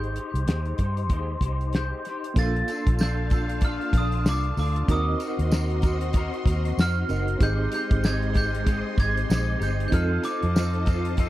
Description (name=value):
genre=indie pop, bedroom pop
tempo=95 BPM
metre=4/4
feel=swing 60% on 16ths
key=Bb major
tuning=A4 = 440 Hz
part: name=glockenspiel with hard plastic mallets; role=melody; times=0.0-11.3 s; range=D6 to A6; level=-32 LUFS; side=right 2 dB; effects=lush chorus
part: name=electric guitar through a small old amp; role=accompaniment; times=0.0-11.3 s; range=Eb3 to C5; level=-33 LUFS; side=left 5 dB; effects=ensemble chorus, warbly pitch drift
part: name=reed electric piano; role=accompaniment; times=0.0-11.3 s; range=Bb3 to F5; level=-34 LUFS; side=right 4 dB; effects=fast tremolo
part: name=vintage muted fingered electric bass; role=bass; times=0.0-11.3 s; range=Gb1 to G2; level=-26 LUFS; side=equal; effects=none
part: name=damped 70s drum kit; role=drums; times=0.0-11.3 s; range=hi-hat, kick drum, snare drum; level=-23 LUFS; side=equal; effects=none
part: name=string machine, violas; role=sustained chords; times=2.4-11.3 s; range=Ab3 to C6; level=-34 LUFS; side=equal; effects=ensemble chorus
part: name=tambourine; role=percussion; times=2.4-11.3 s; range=none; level=-45 LUFS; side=right 4 dB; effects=none
room=little or no reverb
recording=dry, close 1970s-style studio recording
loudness=-22 LUFS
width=side -15 dB against mid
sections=0.0-2.4 A section; 2.4-11.3 B section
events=none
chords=0.0 Abmaj7; 2.4 Bbmaj7; 4.9 Ebm6; 7.4 Abmaj7; 9.9 F7